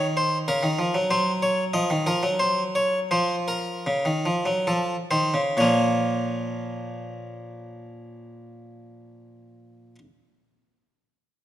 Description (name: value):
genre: classical, baroque-style two-part invention for harpsichord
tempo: 63-98 BPM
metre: 3/4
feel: straight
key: Bb minor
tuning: A4 = 441 Hz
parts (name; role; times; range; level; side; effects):
- harpsichord; solo; 0.0-10.0 s; Bb2 to Eb5; -22 LUFS; equal; none
room: moderate recital hall reverb, RT60 1.8 s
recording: none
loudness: -21 LUFS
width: side -12 dB against mid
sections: 0.0-5.6 A section; 5.6-11.2 B section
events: slowing down 0.2-5.6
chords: 0.5 Bbm/Db; 1.1 Ebm/Gb; 2.4 Gb5; 3.1 Bbm/F; 4.7 F7; 5.6 Bbm